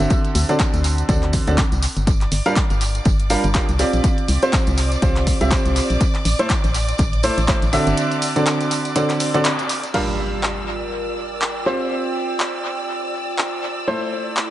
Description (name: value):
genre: piano house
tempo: 122 BPM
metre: 4/4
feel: swing 57% on 16ths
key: G dorian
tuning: A4 = 445 Hz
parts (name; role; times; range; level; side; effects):
- clear upright piano; riff; 0.0-14.5 s; D3 to F5; -21 LUFS; right 1 dB; sidechain pumping, tape echo
- organ-like FM bass; bass; 0.0-7.9 s; G1 to D2; -20 LUFS; equal; sidechain pumping
- punchy analog drum machine; drums; 0.0-14.5 s; crash cymbal, handclaps, hi-hat; -25 LUFS; equal; tape echo
- tambourine; percussion; 0.0-9.9 s; none; -31 LUFS; right 3 dB; tape echo
- electronic kick drum; drums; 0.1-7.6 s; none; -19 LUFS; equal; none
- warm symphonic violin section; sustained chords; 2.1-14.5 s; D5 to E6; -29 LUFS; right 1 dB; sidechain pumping
- impact; sound effects; 9.9-11.9 s; none; -30 LUFS; equal; none
- warbly tape-like pad; texture; 10.3-14.5 s; E4 to G5; -27 LUFS; right 2 dB; chorus, built-in reverb, sidechain pumping
room: moderate spring reverb, RT60 2.4 s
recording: echo-heavy mix, nothing above 10.4 kHz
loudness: -17 LUFS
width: side -13 dB against mid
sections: 0.0-9.9 A section; 9.9-14.5 B section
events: band accent 9.4; impact 9.9-11.9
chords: 0.0 D7; 2.1 Gm7; 3.8 Csus4; 6.0 Am; 8.0 D7; 9.9 Gm7; 11.7 Csus4; 13.9 Am